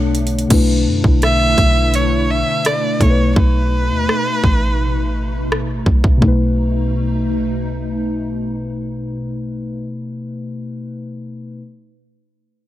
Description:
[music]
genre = contemporary R&B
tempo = 84 BPM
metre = 4/4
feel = straight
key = unclear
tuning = A4 = 445 Hz
[part]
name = muted felt-like synth keys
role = accompaniment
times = 0.0-11.6 s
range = B2 to C#5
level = -21 LUFS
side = left 3 dB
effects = chorus
[part]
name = hollow soft pad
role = sustained chords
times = 0.0-9.8 s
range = B2 to E4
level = -25 LUFS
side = right 1 dB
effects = ensemble chorus
[part]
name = warm 808-style bass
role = bass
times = 0.0-9.8 s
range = A1 to F#2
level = -19 LUFS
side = equal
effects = none
[part]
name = trap drum kit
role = drums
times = 0.1-6.4 s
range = crash cymbal, hi-hat, kick drum, rim click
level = -17 LUFS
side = equal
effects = none
[part]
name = rich erhu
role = melody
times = 1.2-5.5 s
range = B4 to E5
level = -19 LUFS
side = right 1 dB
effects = none
[sound]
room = light reverb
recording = none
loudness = -14 LUFS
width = side -14 dB against mid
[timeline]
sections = 0.5-6.2 A section; 6.2-9.1 B section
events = none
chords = 0.0 Bm9; 0.5 Bm7; 3.0 B7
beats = | 0.51 1.22 1.94 2.65 | 3.36 4.08 4.79 5.51 | 6.22 6.93 7.65 8.36

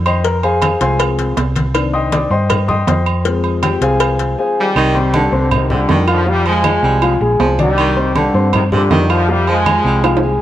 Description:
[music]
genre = latin, salsa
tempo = 159 BPM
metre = 4/4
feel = straight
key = C minor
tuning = A4 = 440 Hz
[part]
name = dark baby grand piano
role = accompaniment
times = 0.0-10.4 s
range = Eb3 to F6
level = -17 LUFS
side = left 3 dB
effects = none
[part]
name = hollow-body short-scale fingered electric bass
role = bass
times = 0.0-10.4 s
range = Bb1 to G2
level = -17 LUFS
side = right 1 dB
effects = none
[part]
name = agogo bells and timbales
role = percussion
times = 0.1-10.3 s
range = none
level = -22 LUFS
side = right 8 dB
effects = none
[part]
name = claves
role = percussion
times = 0.1-10.2 s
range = none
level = -28 LUFS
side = right 6 dB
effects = none
[part]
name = congas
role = percussion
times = 0.1-10.4 s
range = none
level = -22 LUFS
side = left 1 dB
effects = none
[part]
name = cowbell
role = percussion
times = 0.2-4.4 s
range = none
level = -23 LUFS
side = left 6 dB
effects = none
[part]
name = brilliant trombone section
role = melody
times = 4.6-10.2 s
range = G2 to Ab3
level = -17 LUFS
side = equal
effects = none
[part]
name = clear baritone saxophone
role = second line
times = 4.8-10.2 s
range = C3 to G3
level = -20 LUFS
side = right 2 dB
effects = none
[sound]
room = moderate plate reverb, RT60 3.3 s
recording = worn, warbling old tape, cassette tape, warbly pitch drift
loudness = -12 LUFS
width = side -12 dB against mid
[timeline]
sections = 0.0-4.8 A section; 4.8-10.4 B section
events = grand piano solo 0.0-4.8; drum fill 10.0-10.4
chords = 0.2 Fm; 1.7 Cmadd9; 3.3 Fm; 4.8 Cmadd9; 6.3 Fm; 7.8 Cmadd9; 9.3 Fm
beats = | 0.24 0.62 0.99 1.37 | 1.75 2.12 2.50 2.88 | 3.25 3.63 4.01 4.38 | 4.76 5.14 5.51 5.89 | 6.27 6.64 7.02 7.40 | 7.78 8.15 8.53 8.91 | 9.29 9.66 10.04

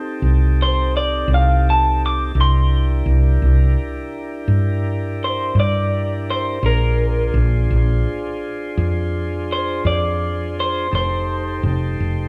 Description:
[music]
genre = slow blues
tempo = 56 BPM (dotted quarters)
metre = 12/8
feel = straight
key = unclear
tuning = A4 = 440 Hz
[part]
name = tonewheel organ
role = sustained chords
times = 0.0-12.3 s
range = C4 to C5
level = -29 LUFS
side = equal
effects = slow rotary speaker
[part]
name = woody fretless electric bass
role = bass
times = 0.2-12.3 s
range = F1 to G2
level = -20 LUFS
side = equal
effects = none
[part]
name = electric guitar through a small old amp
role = melody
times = 0.6-11.6 s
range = Bb4 to D6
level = -23 LUFS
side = equal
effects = vibrato effect
[sound]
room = moderate large studio reverb, RT60 1.1 s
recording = band playing live in one room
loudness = -19 LUFS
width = mono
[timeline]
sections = 0.0-12.3 A section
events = none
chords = 0.0 F9 (rootless); 2.4 C9; 6.6 Bb9; 10.9 F9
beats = 0.21 1.28 | 2.35 3.42 4.49 5.56 | 6.63 7.70 8.77 9.85 | 10.92 11.99

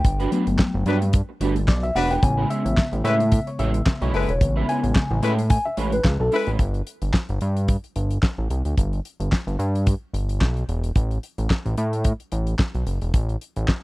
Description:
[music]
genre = early-eighties boogie funk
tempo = 110 BPM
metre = 4/4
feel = swing 56% on 16ths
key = unclear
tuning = A4 = 440 Hz
[part]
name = tine electric piano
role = accompaniment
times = 0.0-6.5 s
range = C#3 to G#5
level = -24 LUFS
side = left 2 dB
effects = phaser
[part]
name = electric guitar at the edge of break-up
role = riff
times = 0.0-6.6 s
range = G#3 to C#5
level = -28 LUFS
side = right 5 dB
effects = ensemble chorus
[part]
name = fat analog bass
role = bass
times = 0.0-13.7 s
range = E1 to A2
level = -22 LUFS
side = equal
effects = none
[part]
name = damped 70s drum kit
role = drums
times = 0.0-13.8 s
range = handclaps, hi-hat, kick drum, snare drum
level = -21 LUFS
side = equal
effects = none
[part]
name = warm horn section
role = second line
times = 0.9-6.5 s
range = F#3 to B4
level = -26 LUFS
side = left 6 dB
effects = none
[sound]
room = small room ambience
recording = dry, close 1970s-style studio recording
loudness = -20 LUFS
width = side -20 dB against mid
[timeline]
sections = 0.0-6.6 A section; 6.6-13.8 B section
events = tine electric piano solo 0.0-6.6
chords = 0.0 Gmaj9; 2.2 Amaj9; 6.6 N.C.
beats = | 0.05 0.59 1.14 1.68 | 2.23 2.77 3.32 3.87 | 4.41 4.96 5.50 6.05 | 6.59 7.14 7.68 8.23 | 8.78 9.32 9.87 10.41 | 10.96 11.50 12.05 12.59 | 13.14 13.68

